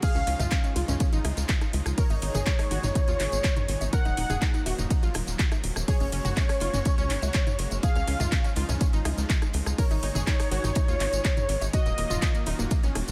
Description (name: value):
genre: progressive house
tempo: 123 BPM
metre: 4/4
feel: straight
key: Db major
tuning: A4 = 440 Hz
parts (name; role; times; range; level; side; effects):
- warm velvety synth lead; melody; 0.0-12.4 s; Db5 to Gb5; -36 LUFS; equal; chorus, dub echo
- airy dreamy lead; second line; 0.0-12.4 s; Db5 to Gb5; -43 LUFS; equal; none
- supersaw pad; sustained chords; 0.0-13.1 s; Bb2 to Ab4; -42 LUFS; equal; sidechain pumping
- unison pluck; arpeggios; 0.0-13.1 s; Bb3 to Bb4; -39 LUFS; equal; sidechain pumping, dub echo
- electronic kick drum; drums; 0.0-12.8 s; none; -28 LUFS; equal; none
- house drum kit; drums; 0.0-13.1 s; crash cymbal, handclaps, hi-hat, rim click, tambourine; -36 LUFS; equal; high-pass filter on hats, high-pass filter on perc, high-pass filter on snare, high-pass filter on cymbals
- huge arena drum kit; drums; 0.0-13.1 s; hi-hat, ride cymbal, snare drum; -47 LUFS; equal; none
- electronic bongos, congas and toms; percussion; 0.0-13.1 s; none; -37 LUFS; equal; sidechain pumping on perc, sidechain pumping on toms
- tight sequencer bass; bass; 0.2-13.1 s; Eb1 to Eb2; -32 LUFS; equal; sidechain pumping
room: digital ambience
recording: none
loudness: -26 LUFS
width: mono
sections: 0.0-13.1 A section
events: drop 0.0-13.1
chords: 0.0 Dbadd9; 2.0 Absus2; 3.9 Ebmadd9; 5.9 Gbadd9; 7.8 Dbadd9; 9.8 Absus2; 11.7 Ebmadd9